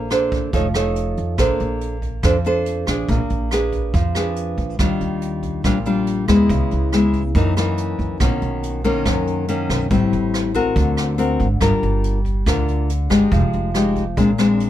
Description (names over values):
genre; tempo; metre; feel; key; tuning
bossa nova; 141 BPM; 4/4; straight; unclear; A4 = 435 Hz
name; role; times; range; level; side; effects
nylon-string guitar; accompaniment; 0.0-14.7 s; Gb2 to C#5; -19 LUFS; left 2 dB; none
upright bass; bass; 0.0-14.7 s; F1 to Gb2; -22 LUFS; right 1 dB; none
jazz brush drum kit; drums; 0.1-14.7 s; hi-hat, kick drum, rim click; -25 LUFS; equal; none
room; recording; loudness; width
little or no reverb; none; -17 LUFS; side -12 dB against mid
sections
0.0-1.4 A section; 1.4-14.7 B section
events
none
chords
0.0 Bbmaj9; 0.5 Faug7; 1.4 Bbmaj9; 3.1 Bb7b9; 4.8 Ebmaj9; 6.5 Dbm7; 7.3 Gb6; 8.2 Bmaj9; 9.9 Am7; 10.8 Daug7; 11.6 Gm7; 13.3 Fm9; 14.2 Bb9